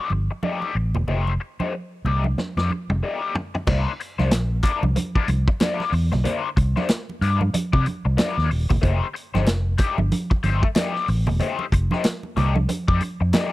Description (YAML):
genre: funk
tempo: 93 BPM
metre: 4/4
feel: swing 60% on 16ths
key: unclear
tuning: A4 = 445 Hz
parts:
  - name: crunchy overdriven guitar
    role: accompaniment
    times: 0.0-13.5 s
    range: A3 to D5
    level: -27 LUFS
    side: left 5 dB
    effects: wah
  - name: fingered electric bass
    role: bass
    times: 0.1-13.3 s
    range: Eb1 to C3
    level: -21 LUFS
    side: equal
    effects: none
  - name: congas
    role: percussion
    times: 0.1-13.5 s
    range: none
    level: -28 LUFS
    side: right 3 dB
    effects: none
  - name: vintage drum kit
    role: drums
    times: 2.4-13.5 s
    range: crash cymbal, hi-hat, kick drum, snare drum, toms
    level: -23 LUFS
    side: equal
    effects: none
  - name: group handclap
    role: percussion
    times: 4.3-13.5 s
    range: none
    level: -36 LUFS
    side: left 3 dB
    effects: none
room: small room ambience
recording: dry, close 1970s-style studio recording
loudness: -20 LUFS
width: side -17 dB against mid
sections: 0.0-3.7 A section; 3.7-13.5 B section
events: drum fill 2.4-3.7; break 3.0-3.7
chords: 0.0 F9; 3.7 C9; 8.8 F9